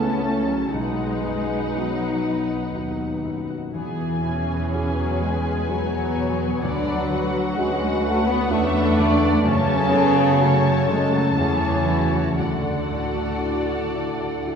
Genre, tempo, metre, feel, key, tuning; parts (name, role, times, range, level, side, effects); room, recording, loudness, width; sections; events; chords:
cinematic, emotional film score for orchestra; 58-64 BPM; 3/4; rubato; A4 = 442 Hz
muted studio violin section; melody; 0.0-14.6 s; F#5 to A5; -31 LUFS; left 1 dB
muted studio violin section; second line; 0.0-14.6 s; C#4 to F#5; -29 LUFS; left 2 dB
dark baby grand piano; accompaniment; 0.0-14.6 s; B1 to B4; -28 LUFS; left 2 dB
muted studio viola section; accompaniment; 0.0-14.6 s; A3 to F#4; -28 LUFS; equal
warm French horn section; sustained chords; 0.0-14.4 s; C#3 to B3; -26 LUFS; left 2 dB
concert harp; arpeggios; 0.0-14.6 s; F#2 to B4; -30 LUFS; left 3 dB
muted studio cello section; bass; 0.0-14.4 s; C#3 to B3; -26 LUFS; right 2 dB
muted studio double bass section; bass; 0.0-14.6 s; B1 to F#2; -29 LUFS; right 2 dB
wet scoring stage reverb, RT60 1.7 s; minimal, uncompressed stereo recording; -19 LUFS; side -6 dB against mid
0.0-14.6 A section
0.0 A/C#; 0.7 B; 3.7 Eadd9; 6.6 Bmadd9/D; 9.4 F#m; 12.4 Dadd9